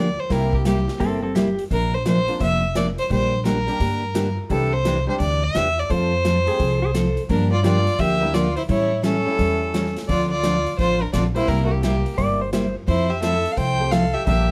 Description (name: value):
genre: country, western swing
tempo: 172 BPM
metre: 4/4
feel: swing 65% on 8ths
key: F major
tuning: A4 = 440 Hz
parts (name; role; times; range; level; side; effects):
- clear fiddle; melody; 0.0-14.5 s; Gb4 to G5; -26 LUFS; equal; none
- picked steel-string acoustic guitar; accompaniment; 0.0-14.5 s; C3 to Bb4; -26 LUFS; equal; none
- upright bass; bass; 0.0-14.5 s; F1 to A2; -26 LUFS; equal; none
- clear upright piano; accompaniment; 0.3-14.5 s; F3 to G4; -32 LUFS; equal; none
- swinging big-band drum kit; drums; 0.3-14.4 s; hi-hat, kick drum, snare drum; -33 LUFS; equal; none
- clean lap steel guitar; second line; 1.0-1.6, 6.5-7.2, 12.2-12.7 s; C4 to D5; -28 LUFS; equal; none
- clear fiddle; second line; 7.3-14.5 s; A3 to C5; -30 LUFS; equal; none
room: moderate club reverb, RT60 0.6 s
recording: none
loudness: -21 LUFS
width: mono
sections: 0.0-14.5 A section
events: none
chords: 0.3 C7; 1.7 Bbadd9; 3.1 Gm/Bb; 4.5 Cadd9; 5.9 F; 7.3 Gm7; 8.7 A7; 10.1 Dm7; 11.5 C7; 12.9 Fmaj7